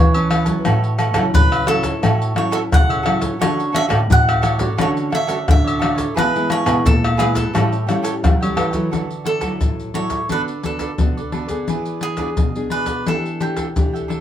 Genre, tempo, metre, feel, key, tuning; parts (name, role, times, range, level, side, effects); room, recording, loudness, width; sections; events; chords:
samba and choro; 87 BPM; 4/4; straight; A major, D major from 8.9 s; A4 = 440 Hz
cavaquinho; melody; 0.0-14.1 s; G4 to F#5; -23 LUFS; right 1 dB
nylon-string guitar; accompaniment; 0.0-14.2 s; A2 to B4; -24 LUFS; equal
nylon-string guitar; bass; 0.0-8.9 s; A2 to F#3; -21 LUFS; right 1 dB
cavaquinho; accompaniment; 0.1-14.2 s; D4 to A5; -26 LUFS; right 6 dB
agogo bells, maracas, pandeiro, surdo and tamborim; percussion; 0.1-14.2 s; -18 LUFS; left 1 dB
wet small room reverb, RT60 0.5 s; band playing live in one room; -16 LUFS; side -10 dB against mid
0.0-8.9 A section; 8.9-14.2 B section
0.0 Aadd9; 0.7 F#m7/A; 3.4 Dmaj7; 6.2 E; 7.5 A7; 8.9 Dadd9; 10.3 Bm7/D; 11.7 E7; 13.1 A7sus4/E